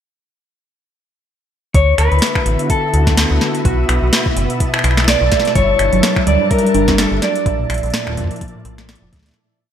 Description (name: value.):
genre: IDM.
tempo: 126 BPM.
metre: 4/4.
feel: swing 56% on 16ths.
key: D major.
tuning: A4 = 440 Hz.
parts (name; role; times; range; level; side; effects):
electric guitar at the edge of break-up; melody; 1.7-9.1 s; F#4 to D5; -18 LUFS; equal; digital delay.
soft string machine; sustained chords; 2.1-9.4 s; B2 to A5; -23 LUFS; left 1 dB; ensemble chorus.
metallic FM bass; bass; 1.7-9.3 s; F1 to F2; -16 LUFS; equal; none.
booming analog drum machine; drums; 1.7-9.4 s; finger snaps, hi-hat, snare drum; -18 LUFS; equal; overdrive, gated reverb.
electronic kick drum; drums; 1.7-9.2 s; none; -18 LUFS; equal; none.
flickering grainy texture; texture; 2.1-9.4 s; E4 to E5; -28 LUFS; equal; built-in reverb.
harp-like synth pluck; arpeggios; 5.6-9.4 s; G2 to D4; -20 LUFS; right 2 dB; chorus, ping-pong delay.
room: moderate lush hall reverb, RT60 1.7 s, digital ambience.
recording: bright 1980s-style digital production.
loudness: -12 LUFS.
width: side -9 dB against mid.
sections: 1.7-9.4 groove.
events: fade-out 6.8-9.4.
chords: 1.7 D6; 3.6 Bm7; 5.6 Gmadd9; 7.5 Bbmaj7.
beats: | 1.75 2.22 2.70 3.17 | 3.65 4.13 4.60 5.08 | 5.55 6.03 6.51 6.98 | 7.46 7.94 8.41 8.89.